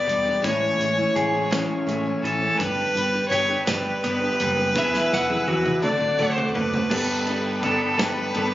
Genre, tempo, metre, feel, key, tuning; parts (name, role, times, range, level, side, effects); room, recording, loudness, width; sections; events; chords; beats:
folk rock and heartland rock; 56 BPM (dotted quarters); 6/8; straight; A major; A4 = 442 Hz
rich fiddle; melody; 0.0-8.5 s; A4 to D5; -24 LUFS; equal; analog delay
picked twelve-string acoustic guitar; accompaniment; 0.0-8.5 s; A2 to E5; -29 LUFS; left 2 dB
muted chamber string section; sustained chords; 0.0-8.5 s; C4 to E6; -35 LUFS; left 1 dB
electric guitar through a small old amp; riff; 0.0-8.5 s; E2 to A4; -27 LUFS; right 1 dB; wide subtle chorus
hollow-body short-scale picked electric bass; bass; 0.1-8.5 s; E1 to E2; -31 LUFS; equal
natural country drum kit; drums; 0.1-8.5 s; crash cymbal, hi-hat, kick drum, ride cymbal, snare drum, toms; -30 LUFS; right 1 dB
electric slide guitar; second line; 4.8-6.7 s; E5 to F#5; -29 LUFS; right 1 dB
clear grand piano; accompaniment; 6.9-8.5 s; B3 to A4; -35 LUFS; equal
light reverb; recorded on a phone in the room, club reverb, compression, nothing above 7.5 kHz; -20 LUFS; side -14 dB against mid
0.0-6.9 A section; 6.9-8.5 B section
drum fill 4.8-6.9
0.4 Amaj7; 2.6 G; 4.8 Eadd9; 5.8 D7; 6.9 Gadd9
| 0.44 1.52 | 2.60 3.69 | 4.76 5.84 | 6.92 8.00